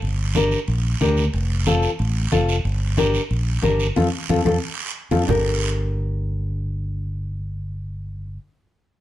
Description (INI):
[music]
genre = latin, cumbia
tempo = 182 BPM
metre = 4/4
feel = straight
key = G minor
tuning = A4 = 440 Hz
[part]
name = fingered electric bass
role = bass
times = 0.0-8.4 s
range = F1 to F2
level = -22 LUFS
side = equal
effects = none
[part]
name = guiro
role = percussion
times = 0.0-5.4 s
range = none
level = -30 LUFS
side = right 6 dB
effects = none
[part]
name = nylon-string guitar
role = accompaniment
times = 0.4-8.4 s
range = C4 to Bb4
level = -22 LUFS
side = left 3 dB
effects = none
[part]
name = congas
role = percussion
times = 0.4-5.4 s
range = none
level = -25 LUFS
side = right 2 dB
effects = none
[sound]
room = light reverb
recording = none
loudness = -19 LUFS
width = side -14 dB against mid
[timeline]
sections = 0.0-5.3 A section; 5.3-7.9 B section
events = band accent 4.0-5.3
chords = 0.0 Gm; 1.3 F; 2.6 Gm; 4.0 F; 5.3 Gm